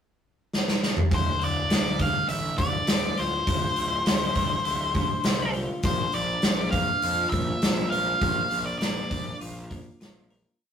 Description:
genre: quiet-loud alternative rock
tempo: 101 BPM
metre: 4/4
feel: straight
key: D minor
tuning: A4 = 440 Hz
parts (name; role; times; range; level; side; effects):
- huge arena drum kit; drums; 0.5-10.4 s; hi-hat, kick drum, snare drum, toms; -26 LUFS; equal; none
- octave-fuzz lead guitar; melody; 1.1-9.4 s; C5 to F5; -27 LUFS; left 1 dB; distortion
- twelve-string electric guitar; arpeggios; 1.1-10.6 s; D2 to Bb4; -34 LUFS; equal; none
- fuzz picked electric bass; bass; 1.1-10.4 s; D1 to F2; -33 LUFS; equal; overdrive
room: moderate studio reverb, RT60 0.7 s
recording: rough rehearsal-room recording, tube saturation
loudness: -23 LUFS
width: side -8 dB against mid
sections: 0.0-1.1 pickup bar; 1.1-10.6 verse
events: drum fill 0.5-1.1; fade-out 8.2-10.6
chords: 0.0 N.C.; 1.1 Dm; 5.8 Bb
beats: 0.53 | 1.12 1.71 2.29 2.88 | 3.47 4.06 4.65 5.24 | 5.84 6.43 7.03 7.62 | 8.22 8.81 9.41 10.01

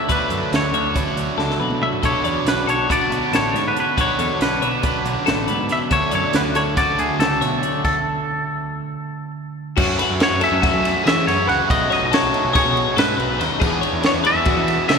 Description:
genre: math rock and midwest emo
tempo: 280 BPM (eighths)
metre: 9/8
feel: straight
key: D lydian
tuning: A4 = 440 Hz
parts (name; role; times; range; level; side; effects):
- twangy electric guitar; melody; 0.0-15.0 s; G#4 to F#5; -21 LUFS; equal; none
- clean electric guitar; accompaniment; 0.0-9.8 s; D2 to F#4; -28 LUFS; right 4 dB; none
- twelve-string electric guitar; arpeggios; 0.0-15.0 s; F#4 to D#5; -24 LUFS; left 6 dB; none
- crunchy overdriven guitar; riff; 0.0-15.0 s; B2 to G#4; -25 LUFS; right 1 dB; none
- growling picked electric bass; bass; 0.1-15.0 s; A1 to F#3; -26 LUFS; right 1 dB; overdrive
- compact cocktail drum kit; drums; 0.1-15.0 s; crash cymbal, hi-hat, kick drum, ride cymbal, snare drum, toms; -23 LUFS; right 1 dB; none
room: wet church reverb, RT60 3.0 s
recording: recorded in a church or concert hall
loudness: -16 LUFS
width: side -5 dB against mid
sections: 0.0-9.8 A section; 9.8-15.0 B section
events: drum fill 1.4-2.0; stop 7.8-9.8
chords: 0.0 Dmaj7; 2.0 Bm7; 5.9 Dmaj7; 9.8 F#m9; 11.7 B13; 13.6 E7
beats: | 0.09 0.31 0.52 0.74 0.95 1.17 1.39 1.60 1.82 | 2.04 2.25 2.47 2.68 2.90 3.12 3.33 3.55 3.76 | 3.98 4.19 4.41 4.62 4.84 5.06 5.27 5.49 5.70 | 5.92 6.13 6.35 6.56 6.78 6.99 7.21 7.42 7.63 | 7.85 8.06 8.28 8.49 8.71 8.92 9.13 9.35 9.56 | 9.78 9.99 10.20 10.42 10.63 10.84 11.05 11.27 11.48 | 11.69 11.91 12.12 12.33 12.55 12.76 12.97 13.19 13.40 | 13.61 13.82 14.04 14.25 14.46 14.68 14.89

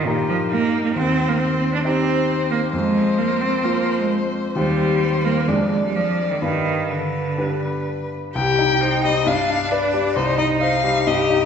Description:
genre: quick classical-period movement for piano trio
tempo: 122-138 BPM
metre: 4/4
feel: rubato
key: C minor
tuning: A4 = 440 Hz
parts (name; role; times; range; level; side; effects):
- rich violin; melody; 0.0-11.5 s; Eb4 to G5; -23 LUFS; left 4 dB; none
- clear cello; second line; 0.0-11.5 s; Bb2 to G4; -21 LUFS; right 2 dB; none
- clear grand piano; accompaniment; 0.0-11.5 s; C2 to D5; -22 LUFS; left 1 dB; none
room: wet recital hall reverb, RT60 1.4 s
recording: heard from further back in the room, nothing above 8.0 kHz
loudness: -18 LUFS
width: side -7 dB against mid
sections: 0.0-8.4 A section; 8.4-11.5 B section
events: none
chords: 0.0 Eb/G; 1.0 Cm/Eb; 2.7 Fm; 4.6 Cm/Eb; 5.5 Ddim/F; 6.4 G; 8.4 Cm; 9.3 G7; 10.2 Cm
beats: 0.07 0.51 | 0.95 1.40 1.85 2.29 | 2.73 3.19 3.64 4.10 | 4.56 5.02 5.48 5.95 | 6.42 6.90 7.38 7.87 | 8.35 8.82 9.27 9.72 | 10.16 10.61 11.07

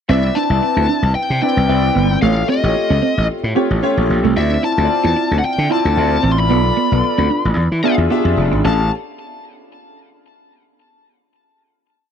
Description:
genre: pop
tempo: 112 BPM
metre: 4/4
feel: swing 54% on 16ths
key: A minor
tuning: A4 = 440 Hz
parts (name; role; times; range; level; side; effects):
- bluesy overdriven lead guitar; melody; 0.1-8.9 s; D#5 to C6; -20 LUFS; left 4 dB; distortion, tape echo
- clear grand piano; accompaniment; 0.1-8.9 s; A3 to E#5; -19 LUFS; left 2 dB; analog chorus
- clean electric guitar; riff; 0.1-8.8 s; A3 to F4; -21 LUFS; right 7 dB; ensemble chorus
- gritty slap bass; bass; 0.1-8.9 s; F1 to E3; -16 LUFS; equal; overdrive
room: light reverb, digital ambience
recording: dry, close 1970s-style studio recording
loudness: -13 LUFS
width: side -8 dB against mid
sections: 0.1-8.6 pre-chorus; 8.6-10.8 final chord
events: none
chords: 0.1 Cmaj9; 2.2 A7alt; 4.4 Dm9; 6.5 Bm7b5; 7.6 E7b9; 8.6 Aaug7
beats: | 0.10 0.63 1.16 1.69 | 2.23 2.76 3.29 3.83 | 4.36 4.89 5.43 5.96 | 6.50 7.03 7.57 8.10 | 8.64

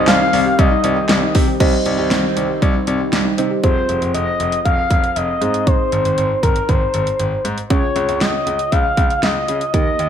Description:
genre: synth-pop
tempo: 118 BPM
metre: 4/4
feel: straight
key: F minor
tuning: A4 = 440 Hz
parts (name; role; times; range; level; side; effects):
- expressive synth lead; melody; 0.0-10.1 s; Bb4 to F5; -19 LUFS; left 2 dB; chorus, ping-pong delay
- muted felt-like synth keys; accompaniment; 0.0-10.1 s; Bb3 to Eb5; -24 LUFS; right 4 dB; chorus
- phased analog pad; sustained chords; 0.0-3.6 s; Eb3 to C4; -24 LUFS; right 1 dB; phaser, chorus
- soft round pluck; arpeggios; 0.0-3.6 s; G3 to G4; -23 LUFS; left 4 dB; chorus, ping-pong delay
- bright concert grand piano; bass; 0.0-10.1 s; F1 to Db3; -22 LUFS; left 1 dB; none
- pop drum kit; drums; 0.1-10.1 s; crash cymbal, handclaps, hi-hat, kick drum, snare drum; -18 LUFS; right 1 dB; gated reverb
room: moderate lush hall reverb, RT60 1.8 s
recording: bright 1980s-style digital production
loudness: -14 LUFS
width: side -8 dB against mid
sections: 0.0-1.6 A section; 1.6-3.6 B section; 3.6-10.1 C section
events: none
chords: 0.0 Cm; 3.6 Fm; 5.4 Ab; 7.7 Db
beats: 0.08 0.58 1.09 | 1.60 2.11 2.62 3.13 | 3.64 4.14 4.65 5.16 | 5.67 6.18 6.69 7.20 | 7.70 8.21 8.72 9.23 | 9.74

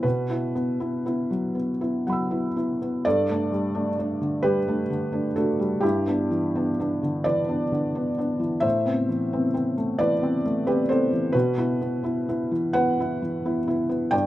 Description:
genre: neoclassical minimalist piano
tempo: 39-45 BPM (dotted quarters)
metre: 6/8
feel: rubato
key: unclear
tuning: A4 = 443 Hz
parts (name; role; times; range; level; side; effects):
- felt-muted upright piano; solo; 0.0-14.3 s; G2 to E6; -22 LUFS; equal; none
room: light reverb, small room ambience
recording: rough home demo mix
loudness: -22 LUFS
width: side -14 dB against mid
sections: 0.0-3.0 A section; 3.0-14.3 B section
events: none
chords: 0.0 Bsus4; 3.0 Gsus2; 5.8 Em7/G; 8.6 Amadd9; 11.3 Bsus4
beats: | 0.04 1.56 | 3.05 4.43 | 5.83 7.26 | 8.64 10.00 | 11.34 12.76 | 14.13

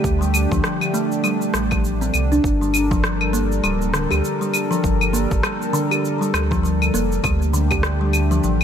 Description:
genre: organic downtempo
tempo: 100 BPM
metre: 4/4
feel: swing 58% on 16ths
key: G minor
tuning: A4 = 440 Hz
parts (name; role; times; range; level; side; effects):
- warm analog pad; sustained chords; 0.0-8.6 s; D3 to Bb4; -24 LUFS; equal; chorus, sidechain pumping
- kalimba; arpeggios; 0.0-8.6 s; D3 to G4; -22 LUFS; equal; low-pass filter, digital delay
- warm sub bass; bass; 0.0-8.6 s; D1 to D2; -21 LUFS; equal; tube saturation
- electronic kick drum; drums; 0.0-7.8 s; none; -24 LUFS; equal; overdrive
- electronic shaker, claves and rim click; drums; 0.0-8.6 s; none; -24 LUFS; left 1 dB; none
room: light reverb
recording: none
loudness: -17 LUFS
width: side -8 dB against mid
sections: 0.0-8.6 A section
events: none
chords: 0.0 D7sus4; 2.4 Gm7; 7.2 Dsus4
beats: | 0.04 0.64 1.24 1.84 | 2.44 3.04 3.64 4.24 | 4.84 5.44 6.04 6.64 | 7.24 7.84 8.44

